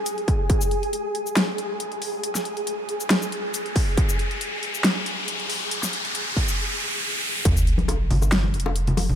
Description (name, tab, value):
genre	deep dubstep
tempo	138 BPM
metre	4/4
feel	swing 54% on 16ths, half-time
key	F minor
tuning	A4 = 440 Hz
part	soft dub sub bass	bass	0.0-9.2 s	Eb1 to G1	-23 LUFS	equal	high-pass filter
part	flickering grainy texture	texture	0.0-6.6 s	Ab4	-30 LUFS	equal	built-in reverb
part	dubstep drum kit	drums	0.1-9.1 s	hi-hat, shaker, snare drum	-26 LUFS	left 1 dB	none
part	electronic kick drum	drums	0.3-0.6, 3.8-7.5 s	none	-22 LUFS	equal	distortion
part	riser and sub drop	sound effects	1.9-9.2 s	none	-27 LUFS	equal	none
part	bongos and congas	percussion	7.5-9.2 s	none	-26 LUFS	left 2 dB	dub echo
room	light reverb, digital ambience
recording	none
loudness	-21 LUFS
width	side -9 dB against mid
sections	0.0-7.5 A section; 7.5-9.2 B section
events	build-up 0.0-7.5; riser 1.9-7.5; drop 7.5-9.2; impact 7.5-9.2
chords	0.0 Fm; 7.5 N.C.